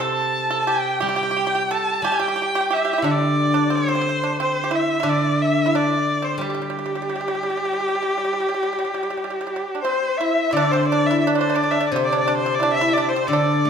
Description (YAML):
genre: chinese traditional, Chinese chamber ensemble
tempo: 88 BPM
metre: 4/4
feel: rubato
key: G zhi mode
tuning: A4 = 440 Hz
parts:
  - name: clear erhu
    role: melody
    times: 0.0-13.7 s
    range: G4 to A5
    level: -22 LUFS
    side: equal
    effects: none
  - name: pipa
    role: second line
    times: 0.0-13.7 s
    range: G3 to A4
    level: -24 LUFS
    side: right 4 dB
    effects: none
  - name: steel-string zither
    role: accompaniment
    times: 0.0-13.7 s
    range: C3 to A3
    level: -24 LUFS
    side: left 2 dB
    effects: none
  - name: large dizi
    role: second line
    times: 9.8-13.7 s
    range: C5 to E5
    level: -24 LUFS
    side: left 4 dB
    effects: none
room: wet recital hall reverb, RT60 1.5 s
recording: recorded in a church or concert hall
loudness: -18 LUFS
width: side -7 dB against mid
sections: 0.0-10.5 A section; 10.5-13.7 B section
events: none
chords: none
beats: 0.34 1.02 1.71 | 2.38 3.05 3.72 4.39 | 5.06 5.73 6.41 7.08 | 7.76 8.44 9.13 9.83 | 10.54 11.24 11.93 12.61 | 13.29